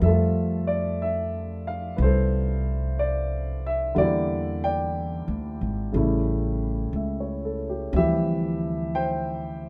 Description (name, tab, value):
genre	jazz ballad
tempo	61 BPM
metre	4/4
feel	swing 67% on 8ths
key	F major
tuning	A4 = 442 Hz
part	warm grand piano	accompaniment	0.0-9.7 s	C3 to G5	-28 LUFS	equal	none
part	upright bass	bass	0.0-9.7 s	Ab1 to F2	-29 LUFS	equal	none
room	moderate studio reverb, RT60 0.5 s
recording	none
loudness	-26 LUFS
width	mono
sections	0.0-7.9 A section; 7.9-9.7 B section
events	none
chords	0.0 Fadd9; 4.0 Em7b5; 5.9 A7; 7.9 Dm11